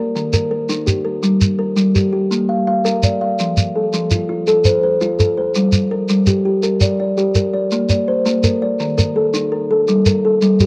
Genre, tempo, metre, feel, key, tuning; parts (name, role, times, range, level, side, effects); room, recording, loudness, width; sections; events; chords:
southern african traditional, mbira-style interlocking cycle; 111 BPM (dotted quarters); 12/8; straight; Bb major; A4 = 435 Hz
kalimba; arpeggios; 0.0-10.7 s; Eb3 to F5; -14 LUFS; equal; cassette tape
shekere; percussion; 0.2-10.7 s; -16 LUFS; right 1 dB
light reverb, small room ambience; home recording on cassette; -14 LUFS; side -28 dB against mid
0.0-7.7 A section; 7.7-10.7 B section
0.2 Eb; 1.2 Gm; 2.3 Bb; 3.4 F; 5.5 Gm; 7.7 Bb; 8.8 Eb5; 9.9 Gm